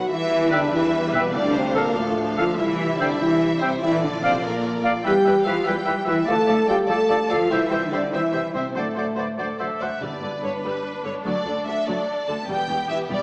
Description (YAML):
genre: cinematic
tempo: 97 BPM (dotted quarters)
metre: 6/8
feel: straight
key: G major from 10.0 s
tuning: A4 = 440 Hz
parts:
  - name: warm symphonic violin section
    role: melody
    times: 0.0-13.2 s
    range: G4 to F5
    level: -34 LUFS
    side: equal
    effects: none
  - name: silver concert flute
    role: second line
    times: 0.0-9.9 s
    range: F5 to B5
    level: -29 LUFS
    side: equal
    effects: none
  - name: warm symphonic violin section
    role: second line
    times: 0.0-13.2 s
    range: A4 to A5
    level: -28 LUFS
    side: equal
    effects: none
  - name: dark French horn section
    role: sustained chords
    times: 0.0-9.4 s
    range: A3 to A4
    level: -22 LUFS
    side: equal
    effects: none
  - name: warm symphonic cello section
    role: bass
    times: 0.0-13.2 s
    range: D2 to A3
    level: -28 LUFS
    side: equal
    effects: none
  - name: warm studio viola section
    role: accompaniment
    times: 0.1-13.2 s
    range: D3 to C5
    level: -30 LUFS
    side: equal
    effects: none
  - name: warm symphonic double bass section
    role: bass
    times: 0.1-13.2 s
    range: E1 to E2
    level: -33 LUFS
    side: equal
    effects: none
  - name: clear clarinet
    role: second line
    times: 0.5-9.9 s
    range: A4 to D5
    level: -29 LUFS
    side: equal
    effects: none
  - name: clear oboe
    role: second line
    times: 0.5-10.0 s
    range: D5 to F#5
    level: -30 LUFS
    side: equal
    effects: none
  - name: timpani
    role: percussion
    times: 10.0-10.6 s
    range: G2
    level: -41 LUFS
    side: equal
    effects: none
room: wet scoring stage reverb, RT60 1.7 s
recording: small speaker sound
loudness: -19 LUFS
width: side -33 dB against mid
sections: 0.1-10.0 A section; 10.0-13.2 B section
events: none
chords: 0.1 Em; 1.4 Dm; 2.6 C; 3.8 Bb; 5.0 Em; 6.3 Dm; 7.5 C; 8.8 D7; 10.0 G; 11.3 D; 12.5 Em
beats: | 0.11 0.73 | 1.35 1.97 | 2.59 3.21 | 3.82 4.44 | 5.05 5.66 | 6.28 6.89 | 7.50 8.12 | 8.75 9.38 | 10.01 10.63 | 11.25 11.87 | 12.49 13.10